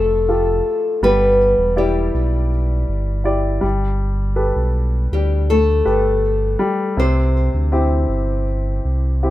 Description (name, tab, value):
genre	pop ballad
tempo	81 BPM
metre	4/4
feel	straight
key	C major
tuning	A4 = 439 Hz
part	nylon-string guitar	melody	0.0-9.2 s	G3 to C5	-18 LUFS	left 1 dB	none
part	warm baby grand piano	accompaniment	0.0-9.3 s	C3 to D5	-22 LUFS	left 1 dB	none
part	sub bass with octave	bass	0.0-9.3 s	E1 to D2	-18 LUFS	equal	none
room	studio ambience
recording	rough home demo mix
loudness	-15 LUFS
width	side -15 dB against mid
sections	0.0-9.3 A section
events	none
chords	0.0 Fadd9; 1.0 Em7; 3.6 Gadd9; 7.0 C